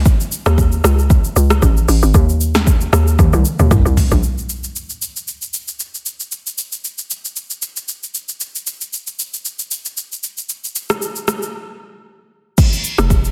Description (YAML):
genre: amapiano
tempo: 115 BPM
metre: 4/4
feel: swing 55% on 16ths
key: unclear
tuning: A4 = 440 Hz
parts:
  - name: hollow log drum bass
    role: bass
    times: 0.0-4.2, 13.0-13.3 s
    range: F1 to Eb2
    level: -16 LUFS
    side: equal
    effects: none
  - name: deep house drum kit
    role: drums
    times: 0.1-13.3 s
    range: crash cymbal, hi-hat, kick drum, rim click, shaker, snare drum, toms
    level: -18 LUFS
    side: equal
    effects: overdrive
room: little or no reverb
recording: dense, heavily limited modern master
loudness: -17 LUFS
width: mono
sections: 0.0-4.2 A section; 4.2-12.6 B section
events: drop 0.0-4.2; drum fill 3.2-4.2; break 11.5-12.6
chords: none